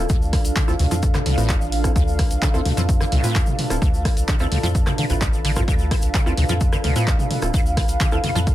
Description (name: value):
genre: acid house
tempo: 129 BPM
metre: 4/4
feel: straight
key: D dorian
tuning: A4 = 440 Hz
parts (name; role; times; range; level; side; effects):
- dark analog pad; sustained chords; 0.0-8.5 s; F5; -31 LUFS; right 1 dB; chorus, sidechain pumping
- filtered dub chord stab; stabs; 0.0-8.4 s; C4 to B4; -30 LUFS; right 3 dB; lush chorus, cassette tape, tape echo
- round analog bass; bass; 0.0-8.5 s; D1 to F2; -24 LUFS; equal; sidechain pumping
- warbly tape-like pad; texture; 0.0-8.5 s; D4 to A5; -30 LUFS; right 1 dB; chorus, built-in reverb, sidechain pumping
- liquid acid bass; riff; 0.1-8.4 s; C2 to F3; -24 LUFS; equal; overdrive, ensemble chorus, sidechain pumping, tape echo
- electronic kick drum; drums; 0.1-8.5 s; none; -20 LUFS; equal; none
- punchy analog drum machine; drums; 0.1-8.5 s; handclaps, hi-hat, rim click, toms; -26 LUFS; left 1 dB; soft clipping on snare
- tube shaker; percussion; 0.1-8.5 s; none; -35 LUFS; left 3 dB; none
room: little or no reverb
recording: dense, heavily limited modern master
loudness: -17 LUFS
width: side -14 dB against mid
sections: 0.0-8.5 A section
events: none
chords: 0.0 Dm7